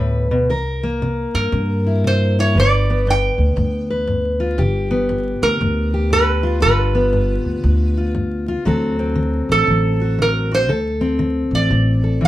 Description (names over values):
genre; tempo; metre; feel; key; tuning
acoustic country blues, solo or duo; 118 BPM; 4/4; swing 64% on 8ths; unclear; A4 = 441 Hz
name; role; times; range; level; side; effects
fingerpicked steel-string acoustic guitar; accompaniment; 0.0-12.3 s; G2 to B4; -20 LUFS; left 1 dB; none
upright bass; bass; 0.0-12.3 s; G1 to G2; -19 LUFS; equal; none
metal-body resonator slide guitar; melody; 1.3-12.3 s; A4 to G5; -19 LUFS; right 2 dB; none
room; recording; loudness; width
light reverb; vinyl crackle; -15 LUFS; side -14 dB against mid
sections
0.0-12.3 A section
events
none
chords
0.0 G (rootless); 0.5 C7; 2.6 G7; 8.7 D7